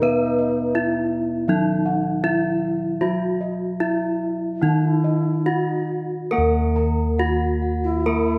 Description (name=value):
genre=Javanese gamelan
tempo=69-84 BPM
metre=4/4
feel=straight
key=Eb pelog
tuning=A4 = 440 Hz
part: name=gamelan-type bronze metallophone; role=melody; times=0.0-8.4 s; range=Eb4 to Cb5-20c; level=-26 LUFS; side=equal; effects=none
part: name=low xiao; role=second line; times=0.0-8.4 s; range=Eb4 to Fb4+27c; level=-31 LUFS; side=equal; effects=none
part: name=gamelan-type bronze metallophone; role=accompaniment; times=0.0-8.4 s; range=Eb3 to Cb4-20c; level=-29 LUFS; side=equal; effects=none
part: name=gamelan-type bossed gongs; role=arpeggios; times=0.0-8.4 s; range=Eb5 to Cb6-20c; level=-32 LUFS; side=equal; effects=tape echo
part: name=gamelan-type bossed gongs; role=bass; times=0.0-8.4 s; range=Eb2 to Cb5-20c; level=-26 LUFS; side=equal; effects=none
part: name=gamelan-type bronze metallophone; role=arpeggios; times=6.3-8.4 s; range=Gb5-30c to Bb5-30c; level=-38 LUFS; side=equal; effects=none
room=moderate recital hall reverb, RT60 1.7 s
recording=none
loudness=-22 LUFS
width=mono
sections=0.0-6.3 A section; 6.3-8.4 B section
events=none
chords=none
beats=| 0.02 0.74 1.48 2.24 | 3.02 3.81 4.63 5.46 | 6.32 7.19 8.06